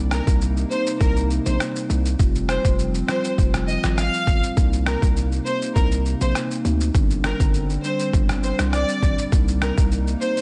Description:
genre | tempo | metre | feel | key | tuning
dancehall | 101 BPM | 4/4 | straight | C minor | A4 = 439 Hz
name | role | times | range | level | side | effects
marimba with soft mallets | accompaniment | 0.0-10.4 s | G3 to F4 | -30 LUFS | equal | sidechain pumping
hollow soft pad | sustained chords | 0.0-10.4 s | C3 to Eb4 | -34 LUFS | equal | chorus, sidechain pumping
hard-hitting 808-style bass | bass | 0.0-10.2 s | F1 to D2 | -25 LUFS | equal | none
warm symphonic violin section | melody | 0.1-10.4 s | Bb4 to F5 | -29 LUFS | equal | digital delay
trip hop sampler-style drum kit | drums | 0.1-10.4 s | kick drum, rim click, shaker | -24 LUFS | equal | none
room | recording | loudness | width
little or no reverb | nothing above 10.9 kHz | -21 LUFS | mono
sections
0.0-10.4 A section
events
none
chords
0.0 Cm7; 2.2 Fsus2; 4.6 Cm7; 6.9 Gsus4; 9.3 Cm7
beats
0.41 1.01 1.60 | 2.19 2.79 3.38 3.98 | 4.57 5.16 5.76 6.35 | 6.95 7.54 8.13 8.73 | 9.32 9.92

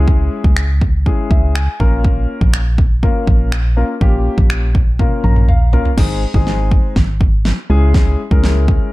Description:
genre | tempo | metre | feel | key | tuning
dance-pop | 122 BPM | 4/4 | straight | unclear | A4 = 440 Hz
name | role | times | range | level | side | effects
warm concert grand piano | accompaniment | 0.0-8.9 s | Ab3 to Bb5 | -21 LUFS | left 4 dB | sidechain pumping
organ-like FM bass | bass | 0.0-8.8 s | Ab1 to Db2 | -14 LUFS | equal | sidechain pumping
pop drum kit | drums | 0.1-8.8 s | crash cymbal, finger snaps, kick drum, snare drum, toms | -14 LUFS | equal | overdrive
room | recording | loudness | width
digital ambience | dark, warm production | -12 LUFS | side -19 dB against mid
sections
0.0-6.0 A section; 6.0-8.9 B section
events
grand piano fill 1.1-2.0, 5.0-6.0; drum fill 5.0-6.0, 6.0-8.9; build-up 6.0-8.9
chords
0.0 Dbm; 1.8 Bbm; 6.0 Ab; 7.7 Dbm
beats
| 0.08 0.57 1.06 1.55 | 2.04 2.54 3.03 3.52 | 4.01 4.50 5.00 5.49 | 5.98 6.47 6.96 7.45 | 7.95 8.44

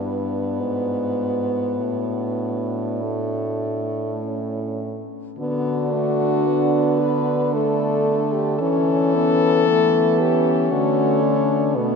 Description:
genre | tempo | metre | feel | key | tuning
classical, lyrical piece for horn quartet | 48-59 BPM | 3/4 | rubato | D major | A4 = 440 Hz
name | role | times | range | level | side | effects
warm French horn | melody | 0.0-12.0 s | D4 to B4 | -24 LUFS | left 7 dB | none
mellow French horn | second line | 0.0-12.0 s | A3 to D4 | -26 LUFS | right 6 dB | none
mellow French horn | accompaniment | 0.0-12.0 s | A3 to C#4 | -24 LUFS | left 2 dB | none
warm French horn | bass | 0.0-12.0 s | G2 to E3 | -25 LUFS | right 2 dB | none
room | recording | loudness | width
wet cathedral reverb, RT60 5.9 s | none | -18 LUFS | side -5 dB against mid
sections
0.0-5.4 A section; 5.4-12.0 B section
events
none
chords
0.0 Em7/G; 0.6 G#dim7; 1.8 D/A; 4.2 A; 5.4 D; 8.6 A/E; 10.7 D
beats
0.61 | 1.78 3.02 4.22 | 5.39 6.47 7.54 | 8.60 9.67 10.72 | 11.75

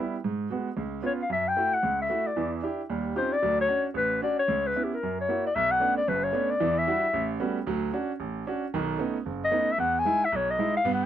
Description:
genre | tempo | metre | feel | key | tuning
jazz | 226 BPM | 4/4 | swing 61% on 8ths | B minor from 5.5 s | A4 = 442 Hz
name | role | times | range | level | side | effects
clear grand piano | accompaniment | 0.0-11.1 s | F#1 to G4 | -29 LUFS | right 4 dB | none
mellow clarinet | melody | 1.1-7.3, 9.4-11.1 s | G4 to G#5 | -25 LUFS | left 3 dB | none
room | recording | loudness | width
light reverb | dry, close 1970s-style studio recording | -25 LUFS | side -10 dB against mid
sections
0.0-5.5 A section; 5.5-11.1 B section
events
none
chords
0.2 G#m7; 0.8 C#7; 1.3 F#m7; 2.4 Em7; 2.9 Eb13; 3.4 Dmaj7; 4.5 C#m7b5; 5.0 F#7; 5.5 Bm9; 6.6 Em9; 7.1 A13; 7.7 Dmaj7; 8.7 B9; 9.8 Emaj7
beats
| 0.24 0.50 0.77 1.03 | 1.30 1.57 1.83 2.10 | 2.36 2.63 2.89 3.16 | 3.42 3.69 3.96 4.22 | 4.49 4.75 5.02 5.28 | 5.55 5.81 6.08 6.34 | 6.61 6.87 7.14 7.40 | 7.67 7.93 8.20 8.46 | 8.73 8.99 9.26 9.52 | 9.79 10.05 10.31 10.58 | 10.84

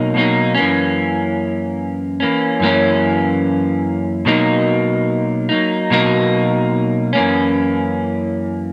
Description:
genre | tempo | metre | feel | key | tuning
indie pop | 73 BPM | 4/4 | straight | B major | A4 = 441 Hz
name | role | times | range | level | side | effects
clean electric guitar | solo | 0.0-8.7 s | F#2 to D#4 | -17 LUFS | equal | subtle chorus, vibrato effect
room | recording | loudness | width
light reverb, digital ambience | none | -17 LUFS | mono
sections
0.0-8.7 A section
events
none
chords
0.0 Bmaj7; 0.6 F#7; 4.3 Bmaj7; 7.1 F#7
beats
0.15 | 0.97 1.79 2.61 3.44 | 4.26 5.08 5.90 6.72 | 7.55 8.37

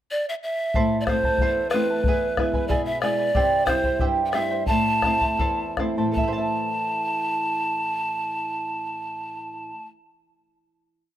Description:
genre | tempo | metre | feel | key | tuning
andean folk, Andean ensemble | 74-93 BPM | 2/4 | straight | A minor | A4 = 441 Hz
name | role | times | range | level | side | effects
breathy mellow pan flute | melody | 0.1-9.9 s | B4 to A5 | -24 LUFS | equal | plate reverb
bombo | percussion | 0.7-6.5 s | none | -26 LUFS | left 2 dB | none
charango | accompaniment | 0.8-10.1 s | E4 to A5 | -28 LUFS | right 4 dB | plate reverb
nylon-string guitar | accompaniment | 0.8-10.1 s | E2 to E5 | -28 LUFS | left 1 dB | plate reverb
room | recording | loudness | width
moderate small room reverb, RT60 0.6 s | rough home demo mix | -21 LUFS | side -12 dB against mid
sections
0.0-0.8 pickup bar; 0.8-6.2 A section; 6.2-9.4 final chord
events
slowing down 3.3-6.2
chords
0.0 N.C.; 0.8 Am; 2.1 E; 3.3 C; 4.7 Am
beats
0.11 | 0.76 1.40 | 2.05 2.70 | 3.35 4.00 | 4.68 5.39 | 6.16 6.97 | 7.78 8.59

